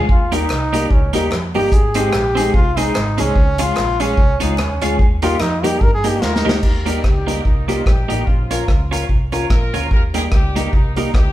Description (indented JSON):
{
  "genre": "ska",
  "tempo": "147 BPM",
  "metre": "4/4",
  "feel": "swing 58% on 8ths",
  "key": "Eb mixolydian",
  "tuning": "A4 = 440 Hz",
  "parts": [
    { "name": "twelve-string electric guitar", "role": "accompaniment", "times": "0.0-11.1 s", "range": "Bb3 to Bb4", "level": "-23 LUFS", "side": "right 4 dB", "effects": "tremolo, slapback echo" },
    { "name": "warm upright piano", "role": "stabs", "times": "0.0-11.1 s", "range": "F3 to Ab4", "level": "-24 LUFS", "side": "left 3 dB", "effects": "none" },
    { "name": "hollow-body short-scale fingered electric bass", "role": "bass", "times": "0.0-11.3 s", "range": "G1 to G2", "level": "-22 LUFS", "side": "equal", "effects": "none" },
    { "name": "breathy trombone", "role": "melody", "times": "0.1-6.6 s", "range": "Db4 to Bb4", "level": "-21 LUFS", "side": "equal", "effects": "none" },
    { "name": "vintage drum kit", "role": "drums", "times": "0.1-11.3 s", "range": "crash cymbal, hi-hat, kick drum, rim click, snare drum", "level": "-17 LUFS", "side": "equal", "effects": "none" },
    { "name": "group handclap", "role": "percussion", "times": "0.5-6.3 s", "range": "none", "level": "-33 LUFS", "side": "left 2 dB", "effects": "none" },
    { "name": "warm horn section", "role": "melody", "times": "6.2-11.3 s", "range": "Eb3 to Bb4", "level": "-27 LUFS", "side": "left 1 dB", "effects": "tube saturation" }
  ],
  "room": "moderate large studio reverb, RT60 1.1 s",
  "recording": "band playing live in one room",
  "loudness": "-14 LUFS",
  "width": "side -14 dB against mid",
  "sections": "0.0-6.6 A section; 6.6-11.3 B section",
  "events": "trombone solo 0.0-6.6; drum fill 6.2-6.6",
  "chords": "0.1 Eb; 1.7 Ab; 3.4 Db; 5.0 Eb; 8.3 Bbm; 9.9 Eb"
}